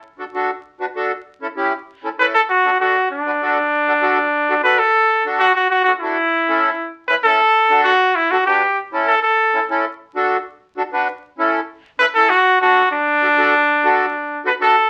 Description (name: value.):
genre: latin.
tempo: 196 BPM.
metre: 4/4.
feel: straight.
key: D major.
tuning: A4 = 441 Hz.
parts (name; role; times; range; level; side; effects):
accordion; accompaniment; 0.2-14.8 s; C#4 to B4; -22 LUFS; equal; none.
brilliant trumpet; melody; 2.2-9.7, 12.0-14.9 s; D4 to B4; -16 LUFS; equal; none.
room: moderate studio reverb, RT60 0.5 s.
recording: very old 78 rpm record, vinyl crackle.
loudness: -16 LUFS.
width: mono.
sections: 0.0-4.9 A section; 4.9-14.8 B section.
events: none.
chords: 0.0 D; 1.3 A7; 2.5 D; 6.2 A; 7.4 D; 8.6 A; 9.8 D; 11.1 A; 12.3 D.